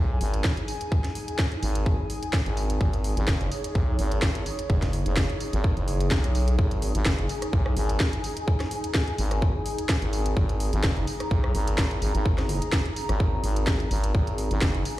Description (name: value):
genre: bass house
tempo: 127 BPM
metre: 4/4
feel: swing 54% on 16ths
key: G# minor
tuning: A4 = 441 Hz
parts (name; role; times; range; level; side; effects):
- growling FM bass; bass; 0.0-14.8 s; F#1 to B1; -25 LUFS; equal; overdrive, sidechain pumping
- airy breathy pad; texture; 0.0-15.0 s; D#4 to A#5; -32 LUFS; equal; chorus, sidechain pumping
- garage drum kit; drums; 0.2-15.0 s; hi-hat, rim click, snare drum; -31 LUFS; equal; overdrive
- electronic kick drum; drums; 0.4-14.7 s; none; -23 LUFS; equal; overdrive
room: digital ambience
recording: played on a big sound system in a bare room, large studio reverb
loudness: -23 LUFS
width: side -15 dB against mid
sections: 0.0-15.0 A section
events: none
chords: 0.0 G#5